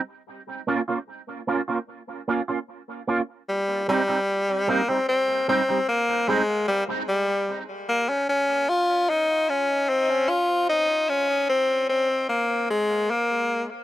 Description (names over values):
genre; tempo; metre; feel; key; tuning
reggae; 75 BPM; 4/4; straight; C phrygian; A4 = 443 Hz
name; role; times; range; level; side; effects
electric guitar with an envelope filter; accompaniment; 0.7-6.4 s; G3 to F4; -26 LUFS; right 4 dB; ensemble chorus, tape echo
edgy tenor saxophone; melody; 3.5-13.6 s; G3 to F4; -21 LUFS; left 1 dB; tape echo
room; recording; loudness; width
light reverb; dry, close 1970s-style studio recording; -21 LUFS; side -14 dB against mid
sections
0.0-13.8 A section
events
break 0.0-3.5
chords
0.3 Bbm; 3.5 Cm; 6.7 N.C.